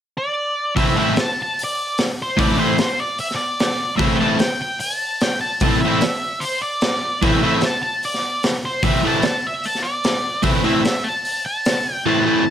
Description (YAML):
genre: garage rock duo or trio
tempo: 149 BPM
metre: 4/4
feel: straight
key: A minor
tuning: A4 = 439 Hz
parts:
  - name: octave-fuzz lead guitar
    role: melody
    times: 0.2-12.5 s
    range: C5 to A5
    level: -22 LUFS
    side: equal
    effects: distortion
  - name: crunchy overdriven guitar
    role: riff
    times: 0.8-12.4 s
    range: A2 to E4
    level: -16 LUFS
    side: equal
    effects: none
  - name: raw garage drum kit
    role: drums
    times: 0.8-11.8 s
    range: hi-hat, kick drum, snare drum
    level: -22 LUFS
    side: equal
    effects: none
room: light reverb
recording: none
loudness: -17 LUFS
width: side -9 dB against mid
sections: 0.8-12.5 A section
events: none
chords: 0.0 N.C.; 0.8 Am